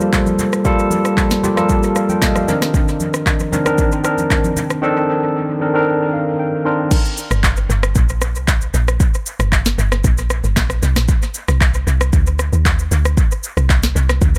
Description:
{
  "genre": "amapiano",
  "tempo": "115 BPM",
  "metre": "4/4",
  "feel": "straight",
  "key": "G minor",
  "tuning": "A4 = 438 Hz",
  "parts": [
    { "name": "tine electric piano", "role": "accompaniment", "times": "0.0-6.9 s", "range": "Eb3 to C6", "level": "-19 LUFS", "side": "equal", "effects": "dub echo" },
    { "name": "afro-pop drum kit", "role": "drums", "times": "0.0-14.4 s", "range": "crash cymbal, handclaps, kick drum, rim click, shaker, snare drum", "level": "-20 LUFS", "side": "equal", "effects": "dub echo" },
    { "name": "congas", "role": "percussion", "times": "0.0-4.7 s", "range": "none", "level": "-28 LUFS", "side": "equal", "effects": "none" },
    { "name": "woody log drum bass", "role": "bass", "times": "7.3-14.4 s", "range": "G1 to Eb2", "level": "-18 LUFS", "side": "equal", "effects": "none" }
  ],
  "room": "little or no reverb",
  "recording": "echo-heavy mix",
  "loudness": "-16 LUFS",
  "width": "mono",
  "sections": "0.0-6.9 A section; 6.9-14.4 B section",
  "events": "tine electric piano fill 1.2-2.7, 5.9-6.9; drop 6.9-14.4",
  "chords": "0.0 Gm9; 2.5 Cm9; 6.9 Gm; 10.8 Csus2",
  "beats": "0.13 | 0.65 1.17 1.70 2.22 | 2.74 3.26 3.78 4.30 | 4.83 5.35 5.87 6.39 | 6.91 7.43 7.96 8.48 | 9.00 9.52 10.04 10.56 | 11.09 11.61 12.13 12.65 | 13.17 13.70 14.22"
}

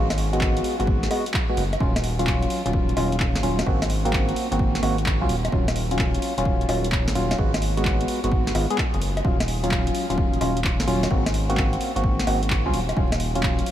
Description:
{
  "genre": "UK garage, two-step garage",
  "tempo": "129 BPM",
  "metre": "4/4",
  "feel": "swing 67% on 16ths",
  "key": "Eb minor",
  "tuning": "A4 = 440 Hz",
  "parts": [
    { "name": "percussive organ stab", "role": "stabs", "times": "0.0-13.7 s", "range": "Gb3 to Ab4", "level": "-25 LUFS", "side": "equal", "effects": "chorus, diffuse ambient delay" },
    { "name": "rubbery square bass", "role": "bass", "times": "0.0-13.6 s", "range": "Eb1 to C2", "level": "-25 LUFS", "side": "equal", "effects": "none" },
    { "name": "punchy analog drum machine", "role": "drums", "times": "0.1-13.7 s", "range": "bongos, handclaps, hi-hat, snare drum", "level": "-28 LUFS", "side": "equal", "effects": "none" },
    { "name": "electronic kick drum", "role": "drums", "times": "0.4-13.6 s", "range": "none", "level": "-25 LUFS", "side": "equal", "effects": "none" }
  ],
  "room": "moderate huge ambient reverb, RT60 8.7 s",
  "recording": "dreamy mix soaked in reverb, vinyl crackle",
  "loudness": "-20 LUFS",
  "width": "side -11 dB against mid",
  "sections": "0.0-13.7 A section",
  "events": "none",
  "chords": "0.0 Abm7; 1.8 Ebm9; 3.7 Ab9; 5.3 Ebm9; 7.4 Abm7; 9.2 Ebm9; 11.1 Ab9; 12.7 Ebm9",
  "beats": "0.41 0.87 1.34 | 1.80 2.27 2.73 3.20 | 3.67 4.13 4.59 5.06 | 5.53 5.99 6.46 6.92 | 7.39 7.85 8.32 8.78 | 9.25 9.71 10.18 10.64 | 11.11 11.57 12.04 12.50 | 12.97 13.43"
}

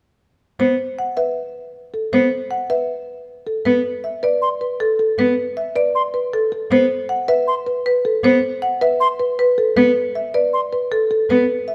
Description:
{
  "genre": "classical, minimalist pattern music",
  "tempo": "157 BPM",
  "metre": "4/4",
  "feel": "straight",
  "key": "unclear",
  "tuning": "A4 = 440 Hz",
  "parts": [
    { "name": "marimba with medium hard mallets", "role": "melody", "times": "0.6-11.7 s", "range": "A4 to F#5", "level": "-22 LUFS", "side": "equal", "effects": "none" },
    { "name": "rich cello", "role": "accompaniment", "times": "0.6-11.4 s", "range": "B3", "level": "-20 LUFS", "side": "equal", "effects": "none" },
    { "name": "marimba with soft mallets", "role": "arpeggios", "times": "1.2-11.4 s", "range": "A4 to B4", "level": "-24 LUFS", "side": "equal", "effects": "none" },
    { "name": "hollow concert flute", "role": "arpeggios", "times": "4.4-10.6 s", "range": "C6", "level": "-24 LUFS", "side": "equal", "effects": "none" }
  ],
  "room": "light reverb",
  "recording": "close, detailed microphones",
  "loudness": "-19 LUFS",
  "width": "mono",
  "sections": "0.6-11.7 A section",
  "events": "none",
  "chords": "0.6 B7(no3); 3.7 Asus2",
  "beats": "| 0.60 0.98 1.36 1.75 | 2.13 2.51 2.89 3.27 | 3.66 4.04 4.42 4.80 | 5.19 5.57 5.95 6.33 | 6.71 7.10 7.48 7.86 | 8.24 8.63 9.01 9.39 | 9.77 10.15 10.54 10.92 | 11.30 11.68"
}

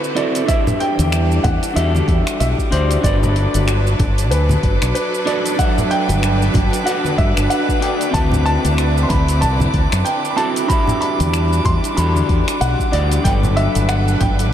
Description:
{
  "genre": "sunset chillout",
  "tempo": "94 BPM",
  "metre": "4/4",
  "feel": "swing 58% on 16ths",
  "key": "G major",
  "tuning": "A4 = 440 Hz",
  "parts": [
    { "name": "warm baby grand piano", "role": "melody", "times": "0.0-14.5 s", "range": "B4 to C6", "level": "-22 LUFS", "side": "equal", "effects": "vintage 12-bit sampler grit, ping-pong delay" },
    { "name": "electric guitar at the edge of break-up", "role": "accompaniment", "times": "0.0-14.5 s", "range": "F#3 to E5", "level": "-22 LUFS", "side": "moving between left 5 dB and right 5 dB", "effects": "auto-pan, ping-pong delay" },
    { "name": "clear studio string section", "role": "sustained chords", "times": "0.0-14.5 s", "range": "D3 to B4", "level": "-25 LUFS", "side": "equal", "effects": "none" },
    { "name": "deep house drum kit", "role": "drums", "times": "0.0-14.5 s", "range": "finger snaps, hi-hat, shaker", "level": "-28 LUFS", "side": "equal", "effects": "overdrive" },
    { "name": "drifting glass-harmonics texture", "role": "texture", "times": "0.0-14.5 s", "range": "D6", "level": "-31 LUFS", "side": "right 4 dB", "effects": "chorus, built-in reverb" },
    { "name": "electronic kick drum", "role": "drums", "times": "0.5-14.4 s", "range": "none", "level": "-19 LUFS", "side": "equal", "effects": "overdrive" },
    { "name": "congas", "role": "percussion", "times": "0.7-14.4 s", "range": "none", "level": "-25 LUFS", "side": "equal", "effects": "none" },
    { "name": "fingered electric bass with an envelope filter", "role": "bass", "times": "1.0-14.5 s", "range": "G1 to G2", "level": "-17 LUFS", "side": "equal", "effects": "none" }
  ],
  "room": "moderate huge ambient reverb, RT60 8.8 s",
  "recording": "dreamy mix soaked in reverb",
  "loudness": "-14 LUFS",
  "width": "side -10 dB against mid",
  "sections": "0.0-14.5 A section",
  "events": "none",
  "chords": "0.5 Em7; 3.0 Gmaj9; 8.1 D13; 10.7 Em7; 13.2 Gmaj9",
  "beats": "| 0.48 1.12 1.76 2.40 | 3.04 3.67 4.31 4.95 | 5.59 6.23 6.87 7.50 | 8.14 8.78 9.42 10.06 | 10.70 11.34 11.97 12.61 | 13.25 13.89 14.53"
}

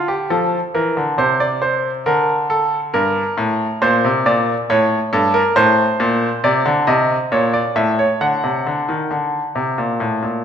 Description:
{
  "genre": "classical, baroque-style two-part invention for grand piano",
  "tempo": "68 BPM",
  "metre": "3/4",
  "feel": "straight",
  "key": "unclear",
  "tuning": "A4 = 440 Hz",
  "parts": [
    { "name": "bright grand piano", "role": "solo", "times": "0.0-10.4 s", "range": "G2 to F#5", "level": "-15 LUFS", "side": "equal", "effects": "none" }
  ],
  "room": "wet recital hall reverb, RT60 1.6 s",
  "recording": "minimal, uncompressed stereo recording",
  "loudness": "-15 LUFS",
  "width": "side -8 dB against mid",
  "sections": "0.3-10.4 A section",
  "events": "none",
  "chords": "0.3 F; 2.1 Bbmaj7/D; 2.9 Gmadd11; 4.7 A7; 5.6 Adim; 7.3 Aadd11; 8.2 D",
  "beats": "| 0.30 1.19 2.07 | 2.95 3.83 4.70 | 5.57 6.44 7.32 | 8.21 9.11 10.00"
}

